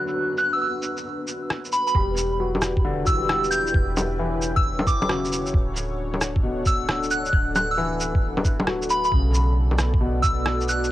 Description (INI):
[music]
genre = future garage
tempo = 134 BPM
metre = 4/4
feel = swing 66% on 16ths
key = E dorian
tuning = A4 = 441 Hz
[part]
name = soft synth bell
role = melody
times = 0.0-10.9 s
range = B5 to G6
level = -25 LUFS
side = equal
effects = chorus, phaser, cassette tape, tape echo
[part]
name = felt-muted upright piano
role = accompaniment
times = 0.0-10.9 s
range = B2 to A3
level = -29 LUFS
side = left 2 dB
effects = sidechain pumping, cassette tape, tape echo
[part]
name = dark analog pad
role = sustained chords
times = 0.0-10.9 s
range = D3 to G5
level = -31 LUFS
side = equal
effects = chorus, sidechain pumping, cassette tape
[part]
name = flickering grainy texture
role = texture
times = 0.0-2.0 s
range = B3 to B4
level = -39 LUFS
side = right 1 dB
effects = built-in reverb, cassette tape
[part]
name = electronic shaker, rim click and bongos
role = drums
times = 0.1-10.9 s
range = none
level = -26 LUFS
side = equal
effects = cassette tape
[part]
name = soft 808-style bass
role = bass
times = 1.9-10.9 s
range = D1 to B1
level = -27 LUFS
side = equal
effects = sidechain pumping
[part]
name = electronic kick drum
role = drums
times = 1.9-10.4 s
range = none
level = -22 LUFS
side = equal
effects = cassette tape
[sound]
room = light reverb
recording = home recording on cassette, low-pass filter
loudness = -20 LUFS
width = side -14 dB against mid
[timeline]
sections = 0.0-2.0 A section; 2.0-10.9 B section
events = filter sweep 0.0-2.0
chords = 0.0 Dmaj7; 2.0 Em7; 5.5 Dmaj7; 9.1 Bm7